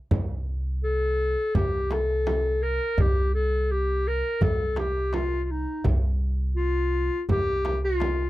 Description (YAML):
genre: Turkish makam ensemble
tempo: 84 BPM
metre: 4/4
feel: straight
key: C makam huseyni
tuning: A4 = 440 Hz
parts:
  - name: upright bass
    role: bass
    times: 0.1-8.3 s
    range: C2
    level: -27 LUFS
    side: equal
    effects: none
  - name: darbuka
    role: percussion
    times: 0.1-8.2 s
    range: none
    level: -28 LUFS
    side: left 1 dB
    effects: none
  - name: frame drum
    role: percussion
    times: 0.1-8.2 s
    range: none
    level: -30 LUFS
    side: right 2 dB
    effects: none
  - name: warm clarinet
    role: melody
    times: 0.8-8.3 s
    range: Eb4 to Bb4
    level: -26 LUFS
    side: left 1 dB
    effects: none
room: little or no reverb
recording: dry, close 1970s-style studio recording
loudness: -23 LUFS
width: side -16 dB against mid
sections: 0.0-8.3 A section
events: none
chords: none